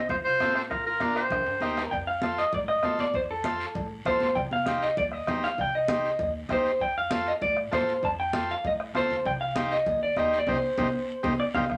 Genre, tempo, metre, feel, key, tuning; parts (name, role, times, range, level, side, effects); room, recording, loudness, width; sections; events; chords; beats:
latin, cumbia; 196 BPM; 4/4; straight; C dorian; A4 = 439 Hz
clear clarinet; melody; 0.0-1.7 s; Bb4 to C5; -28 LUFS; equal
clean electric guitar; second line; 0.0-11.8 s; F4 to A5; -30 LUFS; equal
upright bass; bass; 0.0-11.8 s; Bb1 to A2; -44 LUFS; equal
bombo; percussion; 0.1-11.8 s; -40 LUFS; equal
congas; percussion; 0.1-11.8 s; -36 LUFS; equal
guiro; percussion; 0.1-11.8 s; -48 LUFS; equal
timbales and cowbell; percussion; 0.1-11.8 s; -43 LUFS; equal
combo organ; accompaniment; 0.4-11.7 s; C4 to C5; -34 LUFS; equal
wet studio reverb, RT60 0.6 s; -27 LUFS; mono
0.0-1.9 A section; 1.9-11.7 B section
drum fill 1.3-1.9, 10.5-11.7; clean electric guitar solo 1.9-11.7; band accent 10.5-11.7
0.1 F; 0.7 Bb; 1.3 Cm7; 1.9 F; 4.4 Cm; 6.8 F; 9.3 Cm
0.09 0.40 | 0.70 1.01 1.31 1.62 | 1.92 2.23 2.53 2.84 | 3.14 3.45 3.75 4.06 | 4.37 4.67 4.98 5.28 | 5.59 5.89 6.20 6.50 | 6.81 7.12 7.42 7.73 | 8.03 8.34 8.64 8.95 | 9.26 9.56 9.87 10.17 | 10.48 10.79 11.09 11.40 | 11.70